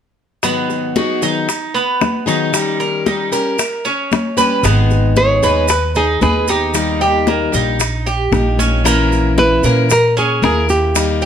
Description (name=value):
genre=latin, Cuban son and guajira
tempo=114 BPM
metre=4/4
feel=straight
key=G# harmonic minor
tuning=A4 = 441 Hz
part: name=picked plugged-in steel-string acoustic guitar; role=accompaniment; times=0.4-11.3 s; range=G#2 to G#4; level=-19 LUFS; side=left 6 dB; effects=none
part: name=Cuban tres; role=arpeggios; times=0.4-11.3 s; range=A#3 to B4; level=-18 LUFS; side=right 3 dB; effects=none
part: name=bongos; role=percussion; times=0.4-11.2 s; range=none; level=-21 LUFS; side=left 7 dB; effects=none
part: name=congas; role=percussion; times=0.4-11.3 s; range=none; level=-23 LUFS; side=left 3 dB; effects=none
part: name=maracas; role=percussion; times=0.4-11.3 s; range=none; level=-25 LUFS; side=right 6 dB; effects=none
part: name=upright bass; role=bass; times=4.6-11.3 s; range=G#1 to A#2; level=-17 LUFS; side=right 1 dB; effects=none
part: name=nylon-string guitar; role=melody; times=5.2-11.3 s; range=G4 to C#5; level=-16 LUFS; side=right 1 dB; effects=plate reverb
room=light reverb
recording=none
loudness=-13 LUFS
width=side -8 dB against mid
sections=0.4-4.6 A section; 4.6-11.3 B section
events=none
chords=0.4 G#m7; 2.5 D#7; 4.6 G#m; 6.7 D#; 8.8 A#dim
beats=| 0.44 0.96 1.49 2.02 | 2.54 3.07 3.59 4.12 | 4.64 5.17 5.70 6.22 | 6.75 7.27 7.80 8.32 | 8.85 9.38 9.90 10.43 | 10.95